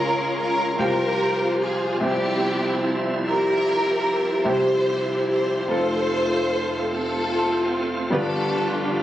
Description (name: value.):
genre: gospel.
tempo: 49 BPM (dotted quarters).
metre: 6/8.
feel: straight.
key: unclear.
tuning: A4 = 439 Hz.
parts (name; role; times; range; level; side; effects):
warm studio string section; melody; 0.0-9.0 s; C4 to C5; -22 LUFS; equal; none.
bright grand piano; accompaniment; 0.0-9.0 s; F1 to G5; -26 LUFS; left 1 dB; none.
overdriven tonewheel organ; sustained chords; 0.0-9.0 s; D3 to F4; -29 LUFS; right 3 dB; slow rotary speaker.
room: light reverb, studio reverb.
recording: recorded on a phone in the room, compression.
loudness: -20 LUFS.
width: side -12 dB against mid.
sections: 0.0-9.0 A section.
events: none.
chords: 0.0 Db; 0.8 Csus4; 2.0 C; 5.7 F; 8.1 G7.